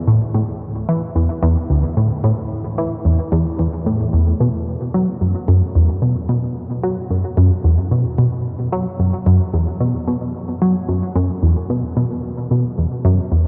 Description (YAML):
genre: ambient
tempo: 111 BPM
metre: 4/4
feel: straight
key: B minor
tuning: A4 = 440 Hz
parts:
  - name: tight sequenced synth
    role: solo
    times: 0.1-13.5 s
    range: D2 to F#3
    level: -18 LUFS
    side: equal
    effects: chorus, analog delay
room: wet huge ambient reverb, RT60 7.7 s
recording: worn, warbling old tape, cassette tape, warbly pitch drift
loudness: -18 LUFS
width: mono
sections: 0.0-4.4 A section; 4.4-13.5 B section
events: none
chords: none